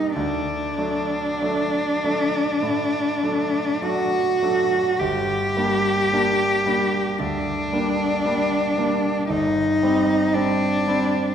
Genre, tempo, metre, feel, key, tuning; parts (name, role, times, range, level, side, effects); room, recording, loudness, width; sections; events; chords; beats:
classical, romantic duo for cello and grand piano; 48-58 BPM; 4/4; rubato; G minor; A4 = 440 Hz
rich cello; melody; 0.0-11.3 s; D4 to G4; -21 LUFS; equal
bright grand piano; accompaniment; 0.0-11.3 s; G1 to Eb4; -25 LUFS; right 1 dB
wet scoring stage reverb, RT60 1.8 s; heard from further back in the room; -19 LUFS; side -8 dB against mid
0.0-11.3 A section
0.2 D; 5.0 Gm; 9.3 Cm/G
| 0.15 1.41 2.62 3.81 | 5.00 6.11 7.18 8.25 | 9.29 10.34